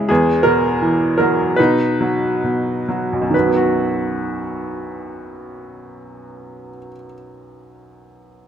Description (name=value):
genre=classical, lyrical solo piano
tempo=64-86 BPM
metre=4/4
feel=rubato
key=B major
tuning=A4 = 440 Hz
part: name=bright upright piano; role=solo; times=0.0-8.5 s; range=B1 to E5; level=-17 LUFS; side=right 1 dB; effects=none
room=light reverb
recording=close, detailed microphones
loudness=-15 LUFS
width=side -9 dB against mid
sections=0.0-3.3 A section; 3.3-6.9 B section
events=slowing down 0.0-3.3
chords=0.1 Esus2; 1.6 B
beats=| 0.10 0.82 1.59 2.43 | 3.34 4.25 5.13 6.01